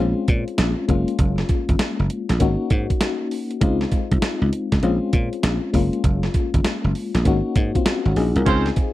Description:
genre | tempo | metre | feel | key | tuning
R&B, new jack swing | 99 BPM | 4/4 | swing 65% on 16ths | unclear | A4 = 440 Hz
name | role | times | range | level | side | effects
FM electric piano with tremolo | accompaniment | 0.0-8.9 s | Ab3 to Bb4 | -24 LUFS | left 4 dB | none
dry thumbed slap bass | bass | 0.0-8.7 s | Gb1 to Bb2 | -20 LUFS | right 1 dB | none
gated 80s digital drum machine | drums | 0.3-8.9 s | hi-hat, kick drum, snare drum | -22 LUFS | right 1 dB | gated reverb, gated reverb snare
clear horn section | stabs | 8.5-8.7 s | C4 to C5 | -22 LUFS | right 7 dB | none
room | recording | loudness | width
little or no reverb | dry, close 1970s-style studio recording | -18 LUFS | side -16 dB against mid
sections
0.0-8.9 A section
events
none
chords
0.0 Bbm9; 0.9 Gbmaj7; 2.4 Ab9sus4; 3.6 Dbmaj7; 4.8 Bbm9; 5.7 Gbmaj7; 7.3 Ab9sus4

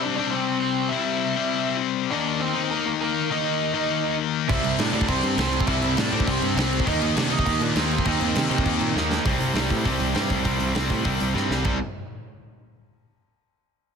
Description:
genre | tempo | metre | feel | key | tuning
punk rock | 202 BPM | 4/4 | straight | unclear | A4 = 439 Hz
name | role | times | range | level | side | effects
nasal lead guitar with a parked wah | melody | 0.0-8.9 s | Bb3 to E5 | -27 LUFS | right 4 dB | overdrive
cranked stack guitar | riff | 0.0-11.8 s | C3 to Eb4 | -25 LUFS | left 12 dB | overdrive
crunchy overdriven guitar | riff | 4.5-11.8 s | C3 to Eb4 | -27 LUFS | right 15 dB | none
fuzz picked electric bass | bass | 4.5-11.8 s | C2 to C3 | -27 LUFS | equal | overdrive
big rock drum kit | drums | 4.5-11.7 s | crash cymbal, hi-hat, kick drum, snare drum | -27 LUFS | equal | soft clipping on kick
room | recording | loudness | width
light reverb | dense, heavily limited modern master | -21 LUFS | side -6 dB against mid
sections
0.0-9.2 A section; 9.2-11.6 B section; 11.6-12.9 C section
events
drum fill 9.0, 11.3-11.6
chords
0.0 C; 2.1 Eb5; 4.5 C; 6.9 Eb5; 9.2 C5

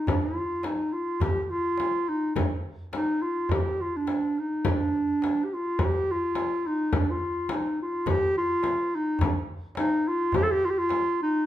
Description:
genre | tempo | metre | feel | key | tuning
Turkish makam ensemble | 105 BPM | 4/4 | straight | unclear | A4 = 437 Hz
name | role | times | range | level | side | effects
dark clarinet | melody | 0.0-11.5 s | D4 to A4 | -25 LUFS | equal | none
darbuka | percussion | 0.1-11.0 s | none | -33 LUFS | right 2 dB | none
frame drum | percussion | 0.1-11.0 s | none | -30 LUFS | left 3 dB | none
room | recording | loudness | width
wet large studio reverb, RT60 0.9 s | band playing live in one room | -24 LUFS | side -12 dB against mid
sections
0.0-11.5 A section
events
none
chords
none

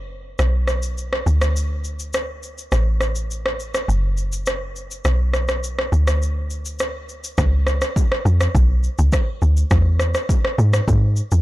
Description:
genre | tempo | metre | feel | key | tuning
afrobeats | 103 BPM | 4/4 | straight | unclear | A4 = 440 Hz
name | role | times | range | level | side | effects
woody log drum bass | bass | 0.0-11.4 s | F#1 to G#2 | -18 LUFS | equal | none
deep house drum kit | drums | 0.4-11.4 s | kick drum, rim click, shaker | -22 LUFS | equal | soft clipping on snare
room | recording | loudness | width
little or no reverb | blown-out, overdriven recording, overdrive | -17 LUFS | side -17 dB against mid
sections
0.0-7.4 A section; 7.4-11.4 B section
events
none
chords
none

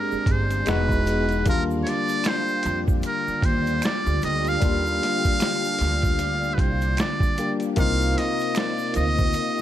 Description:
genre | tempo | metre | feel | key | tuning
R&B, neo-soul | 76 BPM | 4/4 | swing 59% on 16ths | Eb major | A4 = 439 Hz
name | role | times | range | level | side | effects
trumpet with metal mute | melody | 0.0-9.6 s | Bb4 to F5 | -26 LUFS | right 1 dB | plate reverb
barky tine electric piano | accompaniment | 0.0-9.6 s | G3 to G4 | -27 LUFS | left 4 dB | overdrive, auto-pan, plate reverb
phased string machine | sustained chords | 0.0-9.6 s | C3 to G#4 | -32 LUFS | right 1 dB | ensemble chorus, phaser
upright bass | bass | 0.1-9.6 s | E1 to F2 | -25 LUFS | equal | none
egg shaker and finger snaps | percussion | 0.1-9.6 s | none | -40 LUFS | right 10 dB | none
boom bap sampler-style drum kit | drums | 0.3-9.6 s | hi-hat, kick drum, snare drum | -25 LUFS | right 1 dB | none
room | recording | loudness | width
light reverb | none | -20 LUFS | side -12 dB against mid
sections
0.0-9.6 A section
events
none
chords
0.0 Bb13; 0.7 Emaj9; 1.5 Ebmaj9; 7.8 Cm11

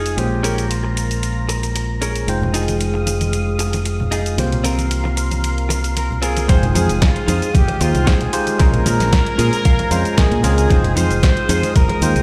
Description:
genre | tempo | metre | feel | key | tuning
nu-disco, nu disco | 114 BPM | 4/4 | straight | F minor | A4 = 440 Hz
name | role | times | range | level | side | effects
mellow trumpet section | melody | 0.0-1.8, 6.0-12.2 s | F4 to C5 | -26 LUFS | equal | tape echo
barky tine electric piano | accompaniment | 0.0-12.2 s | Ab3 to G5 | -26 LUFS | equal | low-pass filter, slapback echo
lush unison pad | sustained chords | 0.0-12.2 s | Ab3 to Eb6 | -30 LUFS | equal | chorus, sidechain pumping
direct-recorded clean electric guitar | riff | 0.0-12.1 s | C4 to Ab5 | -28 LUFS | equal | lush chorus, low-pass filter, slapback echo
fingered electric bass | bass | 0.0-12.2 s | F1 to Bb2 | -22 LUFS | equal | none
house drum kit | drums | 0.1-12.2 s | hi-hat, shaker, snare drum | -27 LUFS | equal | none
tube shaker and congas | percussion | 2.3-12.2 s | none | -29 LUFS | equal | none
electronic kick drum | drums | 6.5-11.9 s | none | -17 LUFS | equal | none
room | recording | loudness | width
little or no reverb | played on a big sound system in a bare room, stone room reverb | -17 LUFS | mono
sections
0.0-6.5 A section; 6.5-12.2 B section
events
filter sweep on tine electric piano 0.0-6.5; drop 6.5-12.2; clean electric guitar fill 9.1-10.7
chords
0.2 Bbm7; 2.3 Fm7; 4.4 C7sus4; 6.5 Fm7; 8.6 Bbm7; 10.7 Fm7

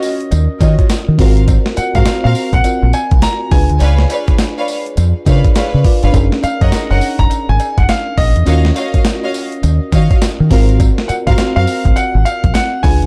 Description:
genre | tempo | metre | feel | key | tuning
R&B, new jack swing | 103 BPM | 4/4 | swing 62% on 16ths | unclear | A4 = 441 Hz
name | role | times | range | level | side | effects
clear concert grand piano | melody | 0.0-13.1 s | Eb5 to Bb5 | -22 LUFS | equal | none
mellow FM electric piano | accompaniment | 0.0-13.1 s | C4 to F5 | -24 LUFS | equal | chorus
warm studio string section | stabs | 0.0-11.7 s | F4 to Gb5 | -24 LUFS | equal | digital delay
dusty soul sampler-style drum kit | drums | 0.0-13.1 s | hi-hat, kick drum, snare drum, tambourine | -16 LUFS | equal | overdrive
deep dub fingered electric bass | bass | 0.3-13.1 s | Gb1 to Eb3 | -14 LUFS | equal | none
cowbell | percussion | 0.3-12.7 s | none | -35 LUFS | equal | none
room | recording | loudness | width
digital ambience | dark, warm production | -13 LUFS | mono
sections
0.0-13.1 A section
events
none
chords
0.0 Ebm9; 1.2 Ab13; 3.5 Db7b9; 6.1 Gb6; 8.5 Ebm9; 10.5 Ab13

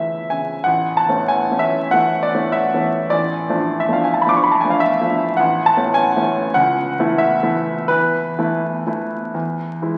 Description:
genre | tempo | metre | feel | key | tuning
classical, romantic nocturne for solo piano | 39-54 BPM | 4/4 | rubato | A major | A4 = 439 Hz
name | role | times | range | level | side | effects
clear grand piano | solo | 0.0-10.0 s | A1 to D6 | -18 LUFS | equal | none
room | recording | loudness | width
wet concert hall reverb, RT60 2.2 s | very old 78 rpm record, vinyl crackle | -18 LUFS | mono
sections
0.7-10.0 A section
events
none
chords
0.0 A/C#; 0.7 A; 3.1 Dm/A; 5.4 A; 6.6 A/C#; 7.9 Esus4; 9.3 E

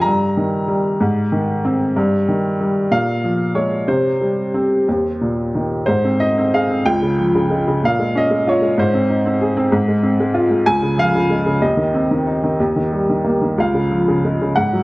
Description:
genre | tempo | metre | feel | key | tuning
classical, lyrical solo piano | 62 BPM (dotted quarters) | 6/8 | rubato | Ab major from 5.9 s | A4 = 443 Hz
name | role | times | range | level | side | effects
clear upright piano | solo | 0.0-14.8 s | Db2 to Bb5 | -15 LUFS | equal | none
room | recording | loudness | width
moderate spring reverb, RT60 2.0 s | dark, warm production | -15 LUFS | side -21 dB against mid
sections
0.0-5.9 A section; 5.9-14.8 B section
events
none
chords
0.1 Eb/G; 1.0 Abadd9; 2.0 Eb/G; 2.9 Bb5; 3.9 C5; 4.9 Eb5; 5.9 Ab; 6.9 Db; 7.8 Bbm7; 8.8 Ab; 9.7 Fm/Ab; 10.7 Db; 11.6 Cm/Eb; 12.6 Eb; 13.6 Db

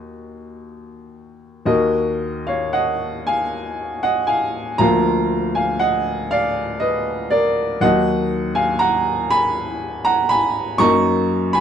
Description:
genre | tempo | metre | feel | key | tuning
classical, romantic nocturne for solo piano | 39 BPM (dotted quarters) | 6/8 | uneven beats, rubato | Eb minor | A4 = 440 Hz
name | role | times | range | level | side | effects
clear upright piano | solo | 0.0-11.6 s | D2 to Db6 | -17 LUFS | equal | none
room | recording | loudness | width
light reverb | dark, warm production | -17 LUFS | side -8 dB against mid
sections
0.0-1.7 A section; 1.7-11.6 B section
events
none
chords
0.0 Ebm; 4.8 Bb/D; 7.8 Ebm; 10.8 Ebm/Gb

